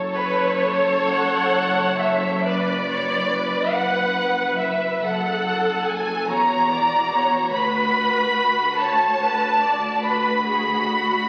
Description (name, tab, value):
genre	classical, slow romantic movement for string orchestra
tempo	48 BPM (dotted quarters)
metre	6/8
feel	uneven beats, rubato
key	unclear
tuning	A4 = 440 Hz
part	warm symphonic violin section	melody	0.0-11.3 s	F#4 to B4	-32 LUFS	equal	none
part	warm symphonic viola section	accompaniment	0.0-11.3 s	F#4 to D5	-27 LUFS	equal	none
part	rich symphonic cello section	bass	0.0-11.3 s	D2 to F#2	-32 LUFS	equal	none
part	warm symphonic double bass section	bass	0.0-11.3 s	E1 to D2	-36 LUFS	equal	none
part	warm symphonic violin section	second line	0.2-11.3 s	B4 to B5	-23 LUFS	equal	none
room	wet scoring stage reverb, RT60 1.5 s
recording	very old 78 rpm record, vinyl crackle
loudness	-21 LUFS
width	mono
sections	0.0-11.3 A section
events	none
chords	0.0 F#m; 2.4 Bm/F#; 5.0 F#m; 6.3 F#7/E; 7.5 Bm/D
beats	1.11 | 2.44 3.74 | 5.03 6.28 | 7.54 8.78 | 10.02 11.27